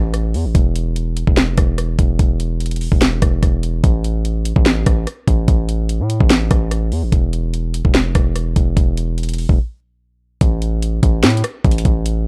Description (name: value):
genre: hip hop, trap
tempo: 146 BPM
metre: 4/4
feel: half-time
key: unclear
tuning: A4 = 440 Hz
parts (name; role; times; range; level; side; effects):
- distorted 808-style bass; bass; 0.0-12.3 s; E1 to A2; -20 LUFS; equal; distortion
- trap drum kit; drums; 0.1-12.2 s; hi-hat, kick drum, rim click, snare drum; -17 LUFS; equal; none
room: little or no reverb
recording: dark, warm production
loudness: -17 LUFS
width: mono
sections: 0.0-10.4 A section; 10.4-12.3 B section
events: break 9.6-10.4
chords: none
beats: 0.14 | 0.55 0.96 1.37 1.78 | 2.19 2.60 3.01 3.42 | 3.84 4.25 4.66 5.07 | 5.48 5.89 6.30 6.71 | 7.12 7.54 7.95 8.36 | 8.77 9.18 9.59 10.00 | 10.41 10.82 11.23 11.64 | 12.05